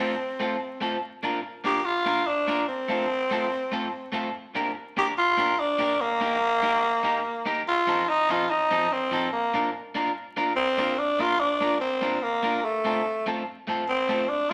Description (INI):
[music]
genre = ska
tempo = 144 BPM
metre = 4/4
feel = swing 55% on 8ths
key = Bb major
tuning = A4 = 439 Hz
[part]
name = growling tenor saxophone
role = melody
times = 0.0-14.5 s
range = A3 to G4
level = -26 LUFS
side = equal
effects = none
[part]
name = electric guitar at the edge of break-up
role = accompaniment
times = 0.0-14.5 s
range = F3 to Bb4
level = -31 LUFS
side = equal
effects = tape echo
[sound]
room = wet studio reverb, RT60 0.9 s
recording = vinyl crackle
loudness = -26 LUFS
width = mono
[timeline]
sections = 0.0-11.0 A section; 11.0-14.5 B section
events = none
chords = 0.0 F; 1.0 Bb; 2.7 F; 4.3 Gm; 6.0 Eb; 7.6 F7; 9.3 Bb; 12.6 F